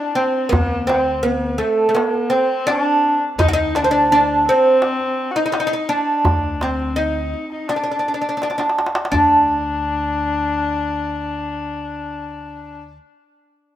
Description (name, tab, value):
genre	Turkish makam ensemble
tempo	84 BPM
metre	4/4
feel	straight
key	D makam hicaz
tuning	A4 = 440 Hz
part	oud	melody	0.0-13.0 s	A3 to F#4	-17 LUFS	right 1 dB	none
part	rich kamancheh	second line	0.0-12.8 s	A3 to F#4	-24 LUFS	left 3 dB	none
part	darbuka	percussion	0.2-9.5 s	none	-22 LUFS	equal	none
part	upright bass	bass	0.5-13.0 s	D2	-29 LUFS	equal	none
room	light reverb, small room ambience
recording	rough home demo mix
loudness	-16 LUFS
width	side -12 dB against mid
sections	0.0-9.1 A section; 9.1-12.0 B section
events	drum fill 8.4-9.1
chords	none